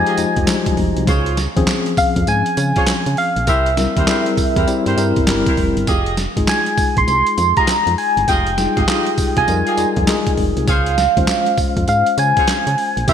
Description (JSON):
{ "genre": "R&B, new jack swing", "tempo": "100 BPM", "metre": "4/4", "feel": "swing 63% on 16ths", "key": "F minor", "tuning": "A4 = 440 Hz", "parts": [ { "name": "soft struck synth lead", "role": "melody", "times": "0.0-13.1 s", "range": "E5 to C6", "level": "-18 LUFS", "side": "equal", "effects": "chorus, phaser, ping-pong delay" }, { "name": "tine electric piano", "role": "accompaniment", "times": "0.0-13.1 s", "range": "F3 to C5", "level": "-21 LUFS", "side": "left 4 dB", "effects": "medium tremolo" }, { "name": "solid FM bass", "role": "bass", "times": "0.0-13.1 s", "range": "F1 to Db3", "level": "-21 LUFS", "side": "right 1 dB", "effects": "none" }, { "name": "warm horn section", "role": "stabs", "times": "0.1-13.1 s", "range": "Db4 to Eb5", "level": "-24 LUFS", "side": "right 2 dB", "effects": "none" }, { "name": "boom bap sampler-style drum kit", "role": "drums", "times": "0.1-13.1 s", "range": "handclaps, hi-hat, kick drum, snare drum, tambourine", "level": "-20 LUFS", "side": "right 1 dB", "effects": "gated reverb" } ], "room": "light reverb, digital ambience", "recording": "bright 1980s-style digital production", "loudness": "-14 LUFS", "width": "side -8 dB against mid", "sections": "0.0-13.1 A section", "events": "none", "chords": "0.0 Fm9; 1.1 Dbmaj7; 3.5 C7; 5.9 Fm9; 10.7 Dbmaj7", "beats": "0.48 | 1.08 1.68 2.28 2.88 | 3.48 4.08 4.68 5.28 | 5.88 6.48 7.08 7.68 | 8.28 8.88 9.48 10.08 | 10.68 11.28 11.88 12.48 | 13.08" }